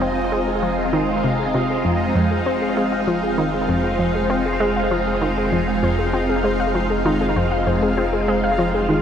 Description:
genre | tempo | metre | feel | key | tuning
ambient, sequencer-driven space music | 98 BPM | 4/4 | straight | F minor | A4 = 440 Hz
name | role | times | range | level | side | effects
phased string machine | sustained chords | 0.0-9.0 s | Ab3 to F4 | -22 LUFS | equal | ensemble chorus, phaser, shimmer reverb
warbly dusty pluck | arpeggios | 0.0-9.0 s | F4 to F5 | -26 LUFS | left 3 dB | chorus, auto-pan, analog delay, shimmer reverb
analog pluck | riff | 0.0-9.0 s | F2 to C4 | -22 LUFS | equal | chorus, analog delay
warm sub bass | bass | 0.0-9.0 s | F1 | -29 LUFS | equal | none
bubbling stepped-filter texture | texture | 0.0-9.0 s | Eb4 to F5 | -27 LUFS | equal | chorus, built-in reverb, shimmer reverb
room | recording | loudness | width
wet huge ambient reverb, RT60 7.4 s | none | -17 LUFS | side -8 dB against mid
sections
0.0-9.0 A section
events
fade-in on synth arpeggio sound 0.0-9.0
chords
0.0 Fm

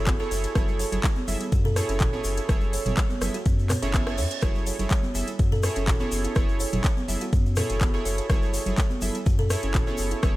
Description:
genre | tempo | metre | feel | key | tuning
afro house | 124 BPM | 4/4 | straight | F# minor | A4 = 440 Hz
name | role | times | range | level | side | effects
warm analog keys | stabs | 0.0-10.4 s | E4 to E5 | -32 LUFS | right 4 dB | chorus, sidechain pumping, digital delay
warm sub bass | bass | 0.0-10.4 s | F#1 to F#2 | -28 LUFS | equal | sidechain pumping
buzzing kalimba | arpeggios | 0.1-10.2 s | C#4 to E5 | -33 LUFS | right 1 dB | sidechain pumping, digital delay
afro-pop drum kit | drums | 0.1-10.3 s | handclaps, hi-hat, rim click, toms | -31 LUFS | equal | none
electronic kick drum | drums | 0.1-10.3 s | none | -23 LUFS | equal | none
congas | percussion | 0.1-10.3 s | none | -34 LUFS | right 2 dB | none
tube shaker | percussion | 0.1-10.3 s | none | -40 LUFS | left 4 dB | none
reverse cymbal | sound effects | 3.8-4.4 s | none | -39 LUFS | right 6 dB | none
room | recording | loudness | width
little or no reverb | none | -22 LUFS | side -17 dB against mid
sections
0.0-10.4 A section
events
reverse cymbal 3.8-4.4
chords
0.0 F#m7

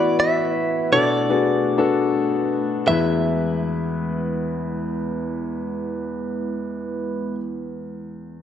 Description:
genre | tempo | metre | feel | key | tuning
pop | free time | none | none | E mixolydian | A4 = 439 Hz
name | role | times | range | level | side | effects
direct-recorded clean electric guitar | melody | 0.0-7.3 s | D5 to E5 | -22 LUFS | right 3 dB | spring reverb
warm upright piano | accompaniment | 0.0-8.4 s | E2 to C#5 | -22 LUFS | left 5 dB | none
glass harmonica | sustained chords | 0.0-7.4 s | G#3 to B4 | -28 LUFS | right 2 dB | none
room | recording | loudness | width
light reverb | dry, close 1970s-style studio recording | -20 LUFS | side -9 dB against mid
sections
0.0-2.9 A section; 2.9-6.8 B section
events
none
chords
0.0 Esus2; 0.9 Bm7; 2.9 E

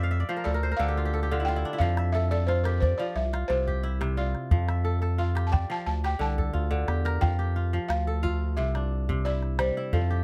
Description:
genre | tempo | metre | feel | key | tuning
west african traditional, West African string and xylophone music | 89 BPM | 4/4 | straight | F major | A4 = 440 Hz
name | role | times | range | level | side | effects
kora | arpeggios | 0.0-10.2 s | C3 to G5 | -34 LUFS | equal | none
round analog bass | bass | 0.0-10.2 s | C2 to F2 | -29 LUFS | equal | none
balafon | melody | 0.4-10.2 s | A4 to A5 | -33 LUFS | equal | none
calabash | percussion | 1.8-10.1 s | none | -30 LUFS | equal | none
room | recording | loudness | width
little or no reverb | close, detailed microphones | -27 LUFS | mono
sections
0.0-7.2 A section; 7.2-10.2 B section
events
kora fill 0.0-1.8; balafon solo 0.0-7.2; drum fill 6.4-7.2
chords
0.5 Dm; 1.8 F; 3.2 C; 4.5 F; 5.9 Dm; 7.2 F; 8.6 C

